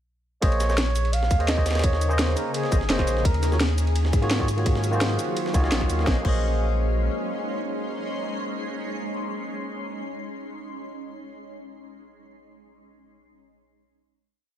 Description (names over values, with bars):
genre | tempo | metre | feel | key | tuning
liquid drum and bass | 170 BPM | 4/4 | straight | Bb minor | A4 = 439 Hz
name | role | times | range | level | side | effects
mellow flugelhorn | melody | 0.4-3.6 s | Ab4 to F5 | -29 LUFS | right 2 dB | tape echo
barky tine electric piano | accompaniment | 0.4-10.1 s | Eb3 to Eb5 | -30 LUFS | equal | overdrive, vintage 12-bit sampler grit, tape echo
shimmering ambient pad | sustained chords | 1.0-9.7 s | Db3 to C6 | -32 LUFS | equal | chorus, built-in reverb, phaser
warm sub bass | bass | 0.4-7.1 s | F1 to Ab2 | -24 LUFS | equal | none
breakbeat sampler-style drum kit | drums | 0.4-6.1 s | ride cymbal, snare drum | -34 LUFS | equal | high-pass filter on cymbals, studio reverb, high-pass filter on snare
drum and bass drum kit | drums | 0.4-6.4 s | cabasa, crash cymbal, hi-hat, snare drum | -28 LUFS | equal | studio reverb
electronic kick drum | drums | 0.4-6.4 s | none | -23 LUFS | equal | studio reverb
room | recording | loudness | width
little or no reverb | none | -22 LUFS | side -11 dB against mid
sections
0.4-6.1 drop; 6.1-8.9 final chord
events
drop 0.4-6.1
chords
0.4 Bbm11; 3.2 Ebm11; 6.1 Bbm11